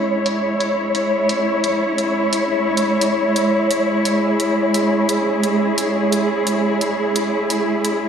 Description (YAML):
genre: half-time drum and bass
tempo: 174 BPM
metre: 4/4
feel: swing 60% on 16ths, half-time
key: C# minor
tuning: A4 = 441 Hz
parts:
  - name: rich symphonic cello section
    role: sustained chords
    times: 0.0-8.1 s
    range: G#3 to C#5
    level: -17 LUFS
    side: equal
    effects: low-pass filter
  - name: flickering grainy texture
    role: texture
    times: 0.0-8.1 s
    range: C#5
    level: -23 LUFS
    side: equal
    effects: built-in reverb
  - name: electronic hi-hat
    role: drums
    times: 0.3-7.9 s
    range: none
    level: -25 LUFS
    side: right 1 dB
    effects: overdrive, low-pass filter on hats, small room reverb, low-pass filter on snare
room: moderate huge ambient reverb, RT60 4.2 s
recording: played on a big sound system in a bare room, large studio reverb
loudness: -16 LUFS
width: side -7 dB against mid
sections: 0.0-8.1 A section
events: none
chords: 0.0 C#m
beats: | 0.09 0.43 0.78 1.12 | 1.47 1.81 2.16 2.50 | 2.85 3.19 3.54 3.88 | 4.23 4.57 4.92 5.26 | 5.61 5.95 6.29 6.64 | 6.98 7.33 7.67 8.02